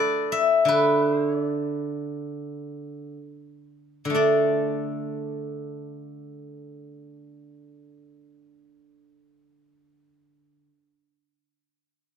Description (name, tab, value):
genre	chinese traditional, Chinese solo plucked strings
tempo	free time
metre	none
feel	none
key	unclear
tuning	A4 = 440 Hz
part	steel-string zither	solo	0.0-10.7 s	D3 to E5	-23 LUFS	equal	none
room	light reverb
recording	close, detailed microphones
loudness	-22 LUFS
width	side -8 dB against mid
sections	0.0-4.2 A section; 4.2-8.1 B section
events	slowing down 0.0-4.2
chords	none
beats	free time